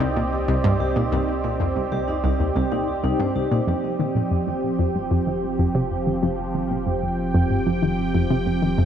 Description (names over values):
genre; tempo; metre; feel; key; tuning
ambient, sequencer-driven space music; 94 BPM; 4/4; straight; unclear; A4 = 440 Hz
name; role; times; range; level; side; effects
sweeping resonant pad; sustained chords; 0.0-8.9 s; F3 to G5; -24 LUFS; right 2 dB; chorus, shimmer reverb
vibraphone with medium mallets; arpeggios; 0.0-3.6 s; Eb4 to C5; -30 LUFS; moving between left 5 dB and right 2 dB; auto-pan, ping-pong delay, shimmer reverb
analog pluck; riff; 0.0-8.8 s; C2 to Eb3; -23 LUFS; equal; chorus, ping-pong delay
round analog bass; bass; 0.0-8.9 s; F1 to C2; -32 LUFS; equal; none
room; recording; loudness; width
moderate plate reverb, RT60 3.0 s; echo-heavy mix; -20 LUFS; side -9 dB against mid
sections
0.0-3.7 A section; 3.7-8.9 B section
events
filter sweep on synth arpeggio sound 3.7-8.9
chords
0.0 Cm; 3.7 Fsus2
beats
0.48 | 1.12 1.76 2.40 3.04 | 3.67 4.31 4.95 5.59 | 6.23 6.87 7.50 8.14 | 8.78